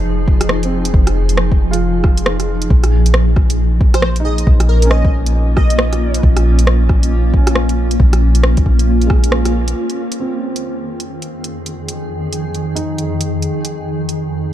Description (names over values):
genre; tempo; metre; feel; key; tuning
future garage; 136 BPM; 4/4; swing 62% on 16ths; F minor; A4 = 440 Hz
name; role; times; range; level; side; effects
felt-muted upright piano; accompaniment; 0.0-14.5 s; Ab3 to Ab4; -27 LUFS; right 1 dB; sidechain pumping, low-pass filter, digital delay
granular cloud pad; sustained chords; 0.0-14.5 s; F2 to Ab4; -20 LUFS; equal; built-in reverb, sidechain pumping
soft 808-style bass; bass; 0.0-9.7 s; F1 to Bb1; -14 LUFS; equal; sidechain pumping
electronic kick drum; drums; 0.3-9.2 s; none; -13 LUFS; equal; overdrive, small room ambience
garage drum kit; drums; 0.4-14.2 s; hi-hat, rim click; -21 LUFS; right 1 dB; overdrive, small room ambience
plucky unison lead; melody; 3.9-6.2 s; Bb4 to Eb5; -25 LUFS; equal; analog chorus, dub echo
room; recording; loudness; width
digital ambience; dark, warm production; -12 LUFS; side -12 dB against mid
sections
0.0-9.8 A section; 9.8-14.5 B section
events
band accent 9.3; filter sweep on felt piano 9.8-14.5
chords
0.0 Fm7; 2.7 Bbm; 9.8 Fm7